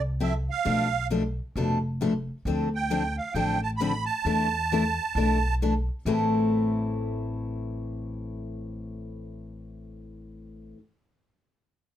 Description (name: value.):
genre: acoustic string swing (jazz manouche).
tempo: 133 BPM.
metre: 4/4.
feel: swing 63% on 8ths.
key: A minor.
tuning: A4 = 440 Hz.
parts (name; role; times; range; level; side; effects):
musette accordion; melody; 0.0-5.6 s; E5 to B5; -28 LUFS; right 5 dB; none.
upright bass; bass; 0.0-10.7 s; F1 to E2; -31 LUFS; equal; none.
picked steel-string acoustic guitar; accompaniment; 0.2-10.8 s; A2 to A4; -28 LUFS; left 2 dB; none.
room: light reverb.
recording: none.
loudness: -24 LUFS.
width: side -11 dB against mid.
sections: 0.0-6.1 A section; 6.1-9.7 B section.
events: none.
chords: 0.0 Fmaj7; 0.7 Bm7b5; 2.5 Dm7; 4.3 E7sus4; 6.1 Am.